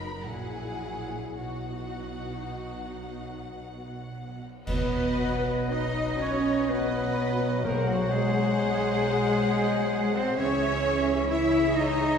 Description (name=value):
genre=classical, slow romantic movement for symphony orchestra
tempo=53-67 BPM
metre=3/4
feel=rubato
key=B major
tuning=A4 = 440 Hz
part: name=warm studio violin section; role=melody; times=0.0-12.2 s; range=D#5 to B5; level=-38 LUFS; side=left 4 dB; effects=none
part: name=warm symphonic violin section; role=second line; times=0.0-12.2 s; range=F#4 to E5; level=-38 LUFS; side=left 3 dB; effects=none
part: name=warm symphonic viola section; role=accompaniment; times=0.0-12.2 s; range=D#4 to C#5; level=-36 LUFS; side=right 2 dB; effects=none
part: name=dark French horn section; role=sustained chords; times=0.0-12.2 s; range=F#3 to E4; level=-30 LUFS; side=left 1 dB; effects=none
part: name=dark symphonic double bass section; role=bass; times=0.0-12.2 s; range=F#1 to C#2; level=-34 LUFS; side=right 3 dB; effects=none
part: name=rich symphonic cello section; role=bass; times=0.0-12.2 s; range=F#2 to E4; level=-32 LUFS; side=right 2 dB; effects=none
part: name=cymbal swell, clash cymbals and concert bass drum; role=percussion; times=1.4-6.7 s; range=none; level=-35 LUFS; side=right 1 dB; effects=none
part: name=clear clarinet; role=second line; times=4.7-12.2 s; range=B#4 to D#5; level=-39 LUFS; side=left 3 dB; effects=none
part: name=concert flute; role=second line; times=4.7-12.2 s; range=F#4 to E5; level=-37 LUFS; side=right 1 dB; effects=none
part: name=warm oboe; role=second line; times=4.7-12.2 s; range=F#4 to E5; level=-36 LUFS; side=right 1 dB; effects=none
part: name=mellow bassoon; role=accompaniment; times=4.7-12.2 s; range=E3 to F#3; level=-34 LUFS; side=left 2 dB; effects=none
part: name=timpani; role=percussion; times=7.6-9.0 s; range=B2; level=-35 LUFS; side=left 3 dB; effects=none
room=wet concert hall reverb, RT60 1.9 s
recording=heard from further back in the room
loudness=-24 LUFS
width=side -7 dB against mid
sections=0.0-4.7 A section; 4.7-12.2 A section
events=band accent 4.7-5.7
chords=0.3 F#7/A#; 1.4 B; 7.6 G#7/B; 10.4 C#m